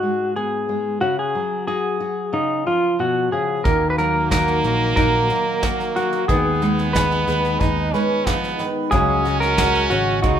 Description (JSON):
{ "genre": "acoustic folk duo or small band", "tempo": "91 BPM", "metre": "4/4", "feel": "straight", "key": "unclear", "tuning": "A4 = 440 Hz", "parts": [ { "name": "pedal steel guitar", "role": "melody", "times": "0.0-10.4 s", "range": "D#4 to B4", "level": "-20 LUFS", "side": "equal", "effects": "none" }, { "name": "nylon-string guitar", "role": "accompaniment", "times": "0.0-10.4 s", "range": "G#2 to G#4", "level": "-25 LUFS", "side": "left 3 dB", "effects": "none" }, { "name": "mellow tonewheel organ", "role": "sustained chords", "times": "3.6-10.4 s", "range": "C#3 to F#4", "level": "-31 LUFS", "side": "equal", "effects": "none" }, { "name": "fingered electric bass", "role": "bass", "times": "3.6-10.4 s", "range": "G#1 to D#2", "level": "-24 LUFS", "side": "equal", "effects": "none" }, { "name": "stopped French horn", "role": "second line", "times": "3.7-10.4 s", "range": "A#3 to D#4", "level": "-25 LUFS", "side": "right 4 dB", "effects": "none" }, { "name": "bowl-back mandolin", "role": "arpeggios", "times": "3.7-10.4 s", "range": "G#3 to G#5", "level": "-27 LUFS", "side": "right 4 dB", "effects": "none" }, { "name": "soft brush drum kit", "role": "drums", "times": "3.7-10.4 s", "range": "kick drum, snare drum", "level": "-24 LUFS", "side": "right 1 dB", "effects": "none" } ], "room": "moderate large studio reverb, RT60 1.2 s", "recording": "minimal, uncompressed stereo recording", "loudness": "-17 LUFS", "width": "side -9 dB against mid", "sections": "0.0-10.4 A section", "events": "none", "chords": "0.0 G#m; 1.0 C#sus4; 2.3 C#; 3.7 D#m; 6.3 G#m/D#; 8.9 C#sus4", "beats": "0.35 | 1.01 1.67 2.33 2.99 | 3.65 4.31 4.97 5.63 | 6.29 6.94 7.60 8.26 | 8.92 9.58 10.24" }